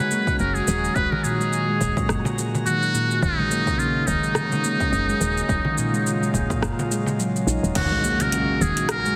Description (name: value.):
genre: organic downtempo.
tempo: 106 BPM.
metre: 4/4.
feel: swing 57% on 16ths.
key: unclear.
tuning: A4 = 440 Hz.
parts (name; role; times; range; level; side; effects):
trumpet with metal mute; melody; 0.0-9.2 s; Eb4 to Cb5; -27 LUFS; equal; tape echo.
airy breathy pad; sustained chords; 0.0-9.2 s; Bb2 to Gb4; -32 LUFS; equal; chorus, sidechain pumping.
handpan; arpeggios; 0.0-9.1 s; Bb2 to Eb4; -28 LUFS; equal; tape echo.
frame drum; percussion; 0.0-7.2 s; none; -32 LUFS; equal; none.
drifting glass-harmonics texture; texture; 0.0-9.2 s; Ab3 to Bb5; -40 LUFS; equal; chorus, built-in reverb.
deep house drum kit; drums; 0.1-9.2 s; crash cymbal, hi-hat, rim click, shaker; -32 LUFS; equal; overdrive.
electronic kick drum; drums; 0.3-7.9 s; none; -31 LUFS; equal; overdrive.
woody FM bass; bass; 0.4-8.7 s; Eb1 to Bb1; -28 LUFS; equal; sidechain pumping.
impact; sound effects; 7.8-9.2 s; none; -33 LUFS; equal; none.
room: moderate lush hall reverb, RT60 1.7 s.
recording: heavily compressed radio sound, multiband compression.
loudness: -22 LUFS.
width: mono.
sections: 0.0-7.8 A section; 7.8-9.2 B section.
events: impact 7.8-9.2.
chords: 0.0 Ab5/Eb; 3.2 Gb69/Eb; 7.8 Ebm7.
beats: 0.40 | 0.96 1.53 2.09 2.66 | 3.23 3.79 4.36 4.92 | 5.49 6.06 6.62 7.19 | 7.75 8.32 8.89.